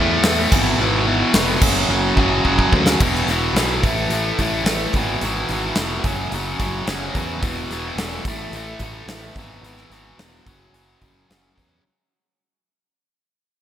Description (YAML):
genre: hard rock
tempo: 109 BPM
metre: 4/4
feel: straight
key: F# minor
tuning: A4 = 440 Hz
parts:
  - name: biting overdriven guitar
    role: riff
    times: 0.0-11.8 s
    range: E2 to A3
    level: -20 LUFS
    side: equal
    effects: none
  - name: modern bright picked electric bass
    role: bass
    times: 0.0-11.8 s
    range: E1 to E2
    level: -25 LUFS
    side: equal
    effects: none
  - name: gated 80s drum kit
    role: drums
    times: 0.2-11.7 s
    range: crash cymbal, hi-hat, kick drum, snare drum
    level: -21 LUFS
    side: equal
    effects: none
room: moderate lush hall reverb, RT60 2.6 s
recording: bright 1980s-style digital production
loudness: -17 LUFS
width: side -10 dB against mid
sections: 0.0-3.0 A section; 3.0-11.8 B section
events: drum fill 2.5-3.0; fade-out 3.0-11.8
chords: 0.0 A5; 0.5 E/G#; 1.6 F#5; 3.0 E5; 3.8 A5; 4.9 E/G#; 6.0 F#5; 7.4 E5; 8.2 A5; 9.4 E/G#; 10.5 F#5